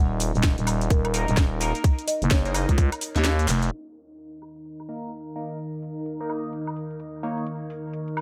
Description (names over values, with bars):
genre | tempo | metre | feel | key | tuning
bass house | 128 BPM | 4/4 | swing 62% on 16ths | unclear | A4 = 440 Hz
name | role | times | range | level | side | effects
folk marimba with soft mallets | melody | 0.0-2.5 s | Bb4 to Gb5 | -35 LUFS | equal | dub echo
growling FM bass | bass | 0.0-3.7 s | Eb1 to Eb2 | -26 LUFS | equal | sidechain pumping
warbly tape-like pad | texture | 0.1-8.2 s | Eb4 to Eb5 | -40 LUFS | equal | chorus, built-in reverb, sidechain pumping
garage drum kit | drums | 0.2-8.2 s | handclaps, hi-hat, shaker, snare drum, woodblock | -31 LUFS | equal | overdrive, low-pass filter on hats, low-pass filter on perc, low-pass filter on snare
electronic kick drum | drums | 0.4-2.9 s | none | -22 LUFS | equal | overdrive
band-passed chord stab | stabs | 1.1-7.5 s | Bb3 to Eb5 | -36 LUFS | equal | phaser, sidechain pumping, dub echo
sweeping resonant pad | sustained chords | 3.7-8.2 s | Eb3 to Bb4 | -37 LUFS | equal | chorus, sidechain pumping
room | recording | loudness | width
digital ambience | low-pass filter | -25 LUFS | mono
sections
0.0-3.7 A section; 3.7-8.2 B section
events
filter sweep on FM bass 0.0-3.7; kick drops out 3.2-3.7; drum fill 3.5; band accent 3.5; filter sweep on drum 3.7-8.2; filter sweep on analog synth pad 3.7-8.2; filter sweep 3.7-8.2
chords
0.0 Eb5